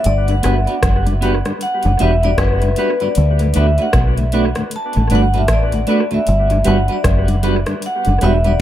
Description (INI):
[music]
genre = roots reggae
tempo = 77 BPM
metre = 4/4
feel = swing 60% on 16ths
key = unclear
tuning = A4 = 440 Hz
[part]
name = vibraphone with hard mallets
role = melody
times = 0.0-8.6 s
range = B4 to A5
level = -20 LUFS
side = left 1 dB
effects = dub echo
[part]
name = booming analog drum machine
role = drums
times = 0.0-8.6 s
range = hi-hat, kick drum, rim click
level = -20 LUFS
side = equal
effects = analog delay
[part]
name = deep dub fingered electric bass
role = bass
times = 0.1-8.6 s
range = E1 to D2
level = -15 LUFS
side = equal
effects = none
[part]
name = tonewheel organ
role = accompaniment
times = 0.3-8.5 s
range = D2 to F#4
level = -23 LUFS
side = left 3 dB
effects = slow rotary speaker, analog delay
[part]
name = clean electric guitar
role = accompaniment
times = 0.4-8.5 s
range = G3 to B4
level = -22 LUFS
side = right 4 dB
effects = dub echo
[sound]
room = light reverb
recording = echo-heavy mix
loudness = -13 LUFS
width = side -12 dB against mid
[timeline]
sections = 0.0-8.6 A section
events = vibraphone solo 0.0-8.6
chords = 0.1 Gmaj7; 3.2 D6; 6.3 Gmaj7